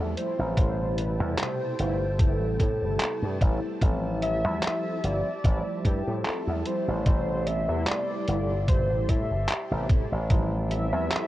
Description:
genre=vaporwave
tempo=74 BPM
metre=4/4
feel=swing 54% on 16ths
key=A minor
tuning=A4 = 436 Hz
part: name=warm velvety synth lead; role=melody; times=0.0-11.3 s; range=G4 to E5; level=-32 LUFS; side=equal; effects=chorus, tape echo
part: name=mellow synth brass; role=accompaniment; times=0.0-11.3 s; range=B2 to G4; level=-33 LUFS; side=equal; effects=ensemble chorus
part: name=soft string machine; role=sustained chords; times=0.1-11.3 s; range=G4 to C6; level=-41 LUFS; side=equal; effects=ensemble chorus
part: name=slap bass with an envelope filter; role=bass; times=0.0-11.1 s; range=G1 to A2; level=-28 LUFS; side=equal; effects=none
part: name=detuned 8-bit digital drum machine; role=drums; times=0.2-11.3 s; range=handclaps, hi-hat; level=-32 LUFS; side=equal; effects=vintage 12-bit sampler grit
part: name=electronic kick drum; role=drums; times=0.6-10.5 s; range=none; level=-22 LUFS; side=equal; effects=vintage 12-bit sampler grit
room=light reverb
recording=worn, warbling old tape, cassette tape, warbly pitch drift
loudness=-24 LUFS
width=side -15 dB against mid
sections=0.0-11.3 A section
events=none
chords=0.0 Fmaj9; 0.6 Am7; 3.8 Fmaj9; 7.1 Am7; 10.3 Fmaj9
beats=| 0.57 1.39 2.20 3.01 | 3.82 4.63 5.44 6.25 | 7.06 7.87 8.68 9.49 | 10.30 11.12

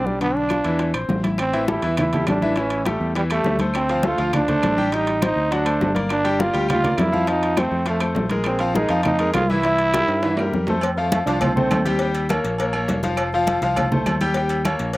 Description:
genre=latin, salsa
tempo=204 BPM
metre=4/4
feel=straight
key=F major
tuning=A4 = 440 Hz
part: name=growling trombone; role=melody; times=0.0-10.5 s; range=G3 to F4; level=-21 LUFS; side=right 2 dB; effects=none
part: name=bright concert grand piano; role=accompaniment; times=0.0-15.0 s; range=D3 to G5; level=-24 LUFS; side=left 2 dB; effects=none
part: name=fingered electric bass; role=bass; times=0.0-15.0 s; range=F1 to G2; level=-26 LUFS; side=equal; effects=none
part: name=bongos and cowbell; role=percussion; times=0.1-15.0 s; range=none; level=-30 LUFS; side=left 4 dB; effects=none
part: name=congas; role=percussion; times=0.1-15.0 s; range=none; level=-25 LUFS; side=equal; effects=none
part: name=timbales and agogo bells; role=percussion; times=0.2-15.0 s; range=none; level=-30 LUFS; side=right 3 dB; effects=slapback echo
part: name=claves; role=percussion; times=0.5-14.8 s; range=none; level=-36 LUFS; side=right 2 dB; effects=none
part: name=clear trombone section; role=second line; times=10.8-12.1 s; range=A3 to D4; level=-25 LUFS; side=right 2 dB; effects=slapback echo
room=little or no reverb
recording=recorded outdoors, with no room sound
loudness=-18 LUFS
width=side -18 dB against mid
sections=0.0-1.4 A section; 1.4-10.8 B section; 10.8-15.0 C section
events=drum fill 10.1-10.8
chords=0.2 Bdim; 0.8 Am; 1.4 Am7; 2.6 A7; 3.7 Dm7; 4.9 Am7b5; 5.5 D7; 6.1 Gm7; 7.3 F7; 8.5 Bb9sus4; 9.6 C7; 10.8 F; 12.0 Eb7; 13.2 F; 14.4 Eb7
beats=| 0.21 0.51 0.80 1.09 | 1.39 1.69 1.98 2.27 | 2.57 2.86 3.16 3.45 | 3.75 4.04 4.34 4.63 | 4.92 5.22 5.51 5.81 | 6.10 6.40 6.69 6.99 | 7.28 7.58 7.87 8.17 | 8.46 8.76 9.05 9.35 | 9.64 9.94 10.23 10.53 | 10.82 11.12 11.41 11.71 | 12.00 12.29 12.59 12.88 | 13.18 13.47 13.77 14.06 | 14.36 14.65 14.94

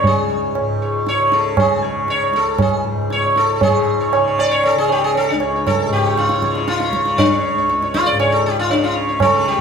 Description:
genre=indian classical, Hindustani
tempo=118 BPM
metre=7/4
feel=straight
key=Db major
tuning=A4 = 440 Hz
part: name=sitar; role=melody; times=0.0-9.6 s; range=D4 to D5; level=-16 LUFS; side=left 1 dB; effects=none
part: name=tanpura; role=drone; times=0.0-9.6 s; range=Db2 to Db3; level=-24 LUFS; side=left 1 dB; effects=none
part: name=tabla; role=percussion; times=0.0-9.6 s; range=none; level=-20 LUFS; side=right 4 dB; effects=none
room=moderate recital hall reverb, RT60 1.5 s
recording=none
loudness=-14 LUFS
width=side -6 dB against mid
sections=0.0-3.6 A section; 3.6-9.6 B section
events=none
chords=none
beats=| 0.04 0.56 1.07 1.58 2.09 2.60 3.11 | 3.62 4.13 4.64 5.15 5.66 6.17 6.67 | 7.18 7.69 8.20 8.70 9.21

